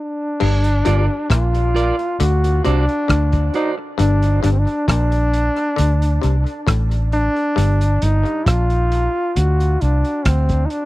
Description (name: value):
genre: dub reggae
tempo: 67 BPM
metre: 4/4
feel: straight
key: G minor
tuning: A4 = 440 Hz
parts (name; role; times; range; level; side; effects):
- clear trombone; melody; 0.0-10.9 s; C4 to F#4; -20 LUFS; equal; dub echo
- muted clav; riff; 0.4-7.8 s; G2 to D3; -28 LUFS; left 9 dB; dub echo
- vintage muted fingered electric bass; bass; 0.4-10.7 s; G1 to D2; -16 LUFS; equal; none
- vintage drum kit; drums; 0.4-10.9 s; crash cymbal, hi-hat, kick drum, rim click; -22 LUFS; equal; none
- clean electric guitar; accompaniment; 0.9-3.8 s; F4 to D5; -26 LUFS; right 4 dB; dub echo
- reed electric piano; stabs; 0.9-1.0 s; F4 to Bb4; -29 LUFS; left 6 dB; none
room: small room ambience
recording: dry, close 1970s-style studio recording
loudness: -15 LUFS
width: side -18 dB against mid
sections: 0.4-10.9 A section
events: break 0.0-0.4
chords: 0.4 Gm7; 2.2 D7; 4.0 Gm; 5.8 D5; 7.6 Gm7; 9.4 Csus2